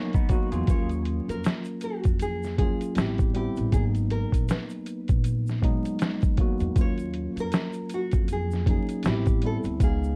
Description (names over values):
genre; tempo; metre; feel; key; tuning
lo-fi hip hop; 79 BPM; 4/4; swing 59% on 16ths; Eb minor; A4 = 437 Hz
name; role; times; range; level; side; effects
electric guitar through a small old amp; second line; 0.0-0.9 s; Bb3 to Ab4; -41 LUFS; equal; spring reverb, analog delay
tine electric piano; accompaniment; 0.0-10.2 s; F3 to F5; -33 LUFS; equal; cassette tape
lo-fi sampler-style drum kit; drums; 0.1-10.0 s; hi-hat, kick drum, snare drum; -27 LUFS; equal; overdrive
tube shaker; percussion; 0.1-10.2 s; none; -57 LUFS; equal; none
upright bass; bass; 0.5-10.2 s; Ab1 to F2; -31 LUFS; equal; none
nylon-string guitar; melody; 0.7-10.2 s; Gb4 to Db5; -37 LUFS; equal; none
room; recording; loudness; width
light reverb; dark, warm production, vinyl crackle; -26 LUFS; mono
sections
0.0-10.2 A section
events
none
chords
0.0 Abm7; 0.7 Ebm9; 3.0 Am7; 3.7 Abm7; 6.8 Ebm9; 9.0 Am7